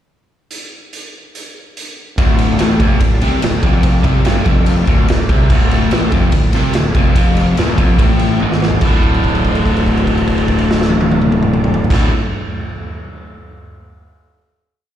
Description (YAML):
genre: blues rock power trio and southern rock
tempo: 144 BPM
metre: 4/4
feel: straight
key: D minor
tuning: A4 = 440 Hz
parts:
  - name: raw garage drum kit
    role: drums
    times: 0.5-12.0 s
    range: crash cymbal, hi-hat, kick drum, ride cymbal, snare drum, toms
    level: -15 LUFS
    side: equal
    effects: none
  - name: overdriven tonewheel organ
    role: sustained chords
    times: 2.2-12.1 s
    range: D4 to D5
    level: -28 LUFS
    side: right 3 dB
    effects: slow rotary speaker, chorus vibrato
  - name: biting overdriven guitar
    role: riff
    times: 2.2-12.1 s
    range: D2 to D3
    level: -16 LUFS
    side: left 1 dB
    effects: none
  - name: fuzz fingered electric bass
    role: bass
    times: 2.2-12.1 s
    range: D1 to C2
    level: -17 LUFS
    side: equal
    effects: overdrive
room: light reverb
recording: live gig heard through the venue's PA, recital hall reverb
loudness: -11 LUFS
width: side -11 dB against mid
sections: 0.5-2.2 pickup bar; 2.2-8.8 riff; 8.8-12.2 final chord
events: drum fill 8.4-8.8; held note 8.8-11.9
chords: 0.5 N.C.; 2.2 Dm